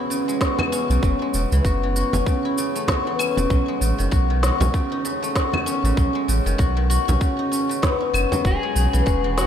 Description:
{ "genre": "organic downtempo", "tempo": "97 BPM", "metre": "4/4", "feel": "swing 58% on 16ths", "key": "unclear", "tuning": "A4 = 440 Hz", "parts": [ { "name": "guzheng", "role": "arpeggios", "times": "0.0-9.5 s", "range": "C#3 to F#4", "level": "-23 LUFS", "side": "left 2 dB", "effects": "ping-pong delay" }, { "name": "quartz singing bowl", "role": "texture", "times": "0.0-9.5 s", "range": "B3 to B4", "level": "-35 LUFS", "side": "left 1 dB", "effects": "none" }, { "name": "electronic cabasa, snare drum and claves", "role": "drums", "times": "0.1-9.5 s", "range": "none", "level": "-28 LUFS", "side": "equal", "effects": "overdrive" }, { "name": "electronic kick drum", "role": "drums", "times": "0.4-9.2 s", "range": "none", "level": "-22 LUFS", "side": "equal", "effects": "overdrive" }, { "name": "frame drum", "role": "percussion", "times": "0.6-8.4 s", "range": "none", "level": "-31 LUFS", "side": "right 2 dB", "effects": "none" }, { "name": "warm sub bass", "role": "bass", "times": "0.9-9.5 s", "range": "E1 to C#2", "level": "-21 LUFS", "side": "equal", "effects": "sidechain pumping" }, { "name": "electric slide guitar", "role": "melody", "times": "8.5-9.5 s", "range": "F#4 to G#4", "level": "-25 LUFS", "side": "left 3 dB", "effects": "ping-pong delay" } ], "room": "wet cathedral reverb, RT60 6.5 s", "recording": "dreamy mix soaked in reverb", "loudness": "-18 LUFS", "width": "side -9 dB against mid", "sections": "0.0-9.5 A section", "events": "none", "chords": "0.0 E; 1.0 F#m9; 3.5 B9; 8.5 Emaj7" }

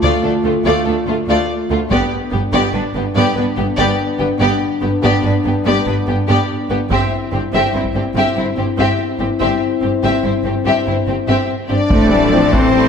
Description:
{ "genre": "cinematic, epic orchestral film score", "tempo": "96 BPM (dotted quarters)", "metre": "12/8", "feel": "straight", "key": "unclear", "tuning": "A4 = 440 Hz", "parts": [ { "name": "warm symphonic violin section", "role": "melody", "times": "0.0-12.9 s", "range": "F4 to E5", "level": "-22 LUFS", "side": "left 5 dB", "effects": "none" }, { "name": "rich symphonic violin section", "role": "second line", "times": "0.0-12.9 s", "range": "A3 to D5", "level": "-22 LUFS", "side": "left 2 dB", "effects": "none" }, { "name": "rich symphonic viola section", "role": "accompaniment", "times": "0.0-12.9 s", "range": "E3 to C4", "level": "-22 LUFS", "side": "right 2 dB", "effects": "none" }, { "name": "warm French horn section", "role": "sustained chords", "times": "0.0-12.9 s", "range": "A3 to F4", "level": "-20 LUFS", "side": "left 5 dB", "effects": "none" }, { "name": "clear symphonic cello section", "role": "bass", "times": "0.0-12.9 s", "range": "D2 to A3", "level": "-22 LUFS", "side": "right 3 dB", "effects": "none" }, { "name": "clear symphonic double bass section", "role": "bass", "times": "0.0-12.9 s", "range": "G1 to D2", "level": "-22 LUFS", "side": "right 3 dB", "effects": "none" }, { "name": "solo taiko drums", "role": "drums", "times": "1.9-2.7, 6.9-8.0, 11.9-12.9 s", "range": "none", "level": "-20 LUFS", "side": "equal", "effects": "none" }, { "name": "clear trumpet", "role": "stabs", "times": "11.7-12.9 s", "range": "C4 to D4", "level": "-20 LUFS", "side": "equal", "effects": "none" }, { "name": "rich symphonic string section", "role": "sustained chords", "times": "11.9-12.9 s", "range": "C4 to A5", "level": "-22 LUFS", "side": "left 1 dB", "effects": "none" }, { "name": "impact", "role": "sound effects", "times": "11.9-12.9 s", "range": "none", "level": "-28 LUFS", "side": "equal", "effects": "none" }, { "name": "mellow trombone section", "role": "sustained chords", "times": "12.3-12.4 s", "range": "E3 to C4", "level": "-24 LUFS", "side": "right 2 dB", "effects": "none" } ], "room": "moderate scoring stage reverb, RT60 1.9 s", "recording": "none", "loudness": "-14 LUFS", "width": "side -6 dB against mid", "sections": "0.0-11.9 A section", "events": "build-up 0.0-11.9; impact 11.9-12.9", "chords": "0.0 Dm; 1.9 G; 6.9 C/G; 11.9 Am" }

